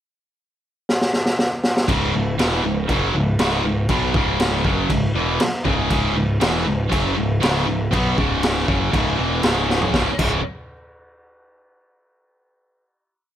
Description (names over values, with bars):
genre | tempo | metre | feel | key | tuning
hard rock | 119 BPM | 4/4 | straight | C# minor | A4 = 440 Hz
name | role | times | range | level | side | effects
raw garage drum kit | drums | 0.9-10.3 s | crash cymbal, kick drum, snare drum, toms | -21 LUFS | equal | none
high-gain distorted guitar | riff | 1.9-10.4 s | C#2 to B3 | -20 LUFS | equal | distortion
growling picked electric bass | bass | 1.9-10.4 s | C#1 to B1 | -24 LUFS | equal | overdrive
room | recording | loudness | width
light reverb | none | -17 LUFS | side -11 dB against mid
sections
0.0-1.9 pickup bar; 1.9-9.9 riff; 9.9-11.9 final chord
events
drum fill 0.9-1.9, 9.7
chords
0.0 N.C.; 1.9 C#m; 9.9 C#5